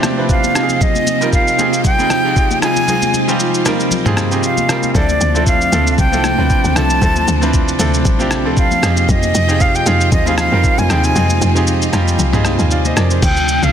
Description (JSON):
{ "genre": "amapiano", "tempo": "116 BPM", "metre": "4/4", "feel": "swing 55% on 16ths", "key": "unclear", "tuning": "A4 = 440 Hz", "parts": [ { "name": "bright grand piano", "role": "accompaniment", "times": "0.0-13.4 s", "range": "F3 to Ab5", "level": "-20 LUFS", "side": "right 2 dB", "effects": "none" }, { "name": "string machine, violins", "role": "sustained chords", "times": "0.0-13.7 s", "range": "C3 to G5", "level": "-20 LUFS", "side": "equal", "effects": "ensemble chorus, sidechain pumping" }, { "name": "lo-fi sampler-style drum kit", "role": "drums", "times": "0.0-13.7 s", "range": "crash cymbal, kick drum, rim click, shaker, toms", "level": "-17 LUFS", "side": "equal", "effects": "soft clipping on snare" }, { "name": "congas", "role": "percussion", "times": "0.0-13.2 s", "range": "none", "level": "-25 LUFS", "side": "left 10 dB", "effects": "none" }, { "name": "jazz flute", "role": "melody", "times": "0.3-13.7 s", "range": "D5 to A5", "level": "-18 LUFS", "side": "right 1 dB", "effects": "ping-pong delay" }, { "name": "woody log drum bass", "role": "bass", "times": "4.9-13.7 s", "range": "A1 to F2", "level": "-17 LUFS", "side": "equal", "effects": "none" } ], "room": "light reverb", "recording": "dense, heavily limited modern master", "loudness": "-12 LUFS", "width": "side -8 dB against mid", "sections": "0.0-13.2 A section", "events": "kick muted 2.9-4.9, 11.2-13.2", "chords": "0.0 Dm9; 0.6 Fm9; 4.9 Dm9; 8.8 Fm9" }